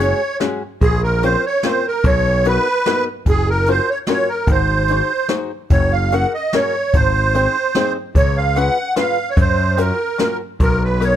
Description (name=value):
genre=musette waltz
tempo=147 BPM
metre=3/4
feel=straight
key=unclear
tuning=A4 = 441 Hz
part: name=musette accordion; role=melody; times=0.0-11.2 s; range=Ab4 to Gb5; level=-18 LUFS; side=right 3 dB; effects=none
part: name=open-back banjo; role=accompaniment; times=0.0-11.2 s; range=Ab3 to C5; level=-21 LUFS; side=left 6 dB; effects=none
part: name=overdriven picked electric bass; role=bass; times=0.0-11.1 s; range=Gb1 to Gb2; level=-18 LUFS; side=equal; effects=none
part: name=jazz brush drum kit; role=drums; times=0.0-11.1 s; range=hi-hat, kick drum, snare drum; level=-19 LUFS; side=equal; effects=none
room=little or no reverb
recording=none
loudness=-15 LUFS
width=side -10 dB against mid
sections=0.0-11.2 A section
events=none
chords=0.0 Gbsus2; 0.8 Bbmadd9; 2.0 Cbmaj7; 3.3 Gbmaj7; 4.5 Ab7; 5.7 Gbadd9; 6.9 Ab; 8.2 Db7; 9.4 Gbmaj7; 10.6 Cbmaj7